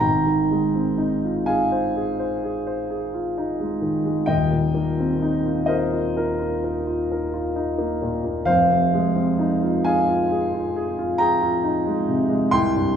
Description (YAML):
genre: classical, impressionist solo piano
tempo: 43 BPM (dotted quarters)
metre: 9/8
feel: uneven beats, rubato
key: Ab major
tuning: A4 = 440 Hz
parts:
  - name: warm concert grand piano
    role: solo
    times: 0.0-13.0 s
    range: Eb1 to C6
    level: -19 LUFS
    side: equal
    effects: none
room: wet recital hall reverb, RT60 1.5 s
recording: heard from further back in the room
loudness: -19 LUFS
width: side -8 dB against mid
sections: 0.0-13.0 A section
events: none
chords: 0.0 Ab6; 4.3 Eb69; 8.5 Fm7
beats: | 0.01 1.49 2.91 | 4.29 5.70 7.11 | 8.47 9.85 11.18 | 12.53